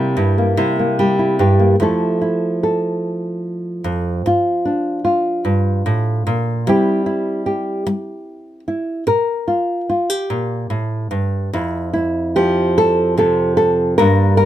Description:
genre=folk, solo fingerstyle acoustic guitar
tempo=49 BPM (dotted quarters)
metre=6/8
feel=straight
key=F major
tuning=A4 = 440 Hz
part: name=nylon-string guitar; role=solo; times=0.0-14.5 s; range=F2 to Bb4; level=-15 LUFS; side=equal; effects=none
room=little or no reverb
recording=close, detailed microphones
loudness=-15 LUFS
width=side -12 dB against mid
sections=0.0-1.8 A section; 1.8-11.5 B section; 11.5-14.5 C section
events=none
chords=0.0 C7; 1.8 Fmaj7; 4.2 Gm7; 6.7 C; 9.1 Bb5; 11.5 F5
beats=0.56 | 1.79 3.02 | 4.24 5.46 | 6.67 7.87 | 9.08 10.30 | 11.54 12.76 | 13.98

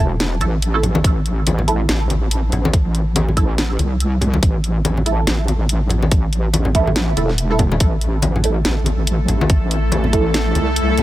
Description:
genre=deep dubstep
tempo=142 BPM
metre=4/4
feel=swing 58% on 16ths, half-time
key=A minor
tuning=A4 = 439 Hz
part: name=filtered dub chord stab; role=stabs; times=0.0-10.3 s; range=A3 to A4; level=-25 LUFS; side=right 4 dB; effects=phaser, ensemble chorus, cassette tape, dub echo
part: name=wobble bass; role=bass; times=0.0-11.0 s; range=E1 to C2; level=-18 LUFS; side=equal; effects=chorus, tube saturation
part: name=garage drum kit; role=drums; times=0.2-11.0 s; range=hi-hat, snare drum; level=-23 LUFS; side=equal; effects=none
part: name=congas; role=percussion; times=0.4-11.0 s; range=none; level=-23 LUFS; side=left 2 dB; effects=dub echo
part: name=electronic kick drum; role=drums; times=1.0-10.2 s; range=none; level=-15 LUFS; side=equal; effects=none
part: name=bowed-like drone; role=sustained chords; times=8.7-11.0 s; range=A3 to A4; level=-22 LUFS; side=left 2 dB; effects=built-in reverb
room=little or no reverb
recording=none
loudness=-15 LUFS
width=side -15 dB against mid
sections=0.0-11.0 A section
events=none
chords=0.0 A5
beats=0.20 0.62 | 1.05 1.47 1.89 2.31 | 2.74 3.16 3.58 4.00 | 4.43 4.85 5.27 5.69 | 6.12 6.54 6.96 7.38 | 7.81 8.23 8.65 9.07 | 9.50 9.92 10.34 10.76

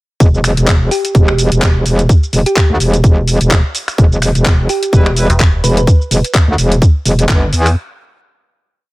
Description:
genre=bass house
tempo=127 BPM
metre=4/4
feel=swing 56% on 16ths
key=E minor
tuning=A4 = 440 Hz
part: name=metallic wobble bass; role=bass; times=0.2-7.7 s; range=E1 to E2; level=-12 LUFS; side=equal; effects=chorus, sidechain pumping
part: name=electronic kick drum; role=drums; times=0.2-7.4 s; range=none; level=-10 LUFS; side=equal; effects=none
part: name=garage drum kit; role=drums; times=0.2-7.7 s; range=finger snaps, handclaps, hi-hat, shaker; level=-18 LUFS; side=equal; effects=none
part: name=thumb-piano-like synth pluck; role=melody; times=0.9-5.8 s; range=G4 to B4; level=-20 LUFS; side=right 1 dB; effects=analog chorus, digital delay
part: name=clear horn section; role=stabs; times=4.9-5.3 s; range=G3 to B4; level=-23 LUFS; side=right 1 dB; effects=sidechain pumping, digital delay
part: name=metallic FM bass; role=bass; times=5.3-5.6 s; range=E1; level=-13 LUFS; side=equal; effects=tube saturation, sidechain pumping
room=digital ambience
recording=none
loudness=-9 LUFS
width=side -20 dB against mid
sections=0.2-7.8 drop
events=drop 0.2-7.8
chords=none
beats=| 0.20 0.68 1.15 1.62 | 2.09 2.56 3.04 3.51 | 3.98 4.46 4.93 5.40 | 5.87 6.34 6.82 7.29

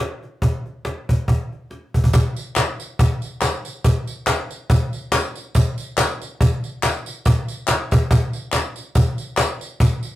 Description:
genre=gospel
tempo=141 BPM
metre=4/4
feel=swing 55% on 8ths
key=none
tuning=none
part: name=cajon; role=drums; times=0.2-10.1 s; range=none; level=-18 LUFS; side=equal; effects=none
part: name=tambourine and handclaps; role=percussion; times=2.1-10.1 s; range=none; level=-25 LUFS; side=left 3 dB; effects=none
room=moderate studio reverb, RT60 0.6 s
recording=rough rehearsal-room recording, tube saturation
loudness=-18 LUFS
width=side -15 dB against mid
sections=0.0-2.1 A section; 2.1-10.2 B section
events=drum fill 1.7-2.1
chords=none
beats=| 0.42 0.85 1.28 1.71 | 2.13 2.56 2.99 3.42 | 3.84 4.27 4.70 5.12 | 5.55 5.97 6.40 6.83 | 7.25 7.68 8.10 8.53 | 8.95 9.38 9.80

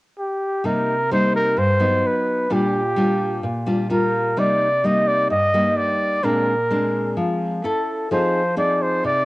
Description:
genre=bossa nova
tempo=129 BPM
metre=4/4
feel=straight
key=C minor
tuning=A4 = 440 Hz
part: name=breathy trumpet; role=melody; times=0.2-9.2 s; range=G4 to Eb5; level=-20 LUFS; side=equal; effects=none
part: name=nylon-string guitar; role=accompaniment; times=0.6-9.2 s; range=G2 to A4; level=-21 LUFS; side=left 1 dB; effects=cassette tape
room=moderate spring reverb, RT60 1.8 s, small room ambience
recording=home recording on cassette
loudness=-18 LUFS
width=side -20 dB against mid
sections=0.6-9.2 A section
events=none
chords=0.0 N.C.; 0.6 Cm7; 2.0 B/F#; 2.5 Gm7/Bb; 4.4 Cm7; 6.2 Bb9; 7.6 A/C#; 8.1 Fm7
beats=0.17 | 0.64 1.10 1.57 2.03 | 2.50 2.97 3.43 3.90 | 4.37 4.83 5.30 5.76 | 6.23 6.70 7.17 7.63 | 8.10 8.57 9.03

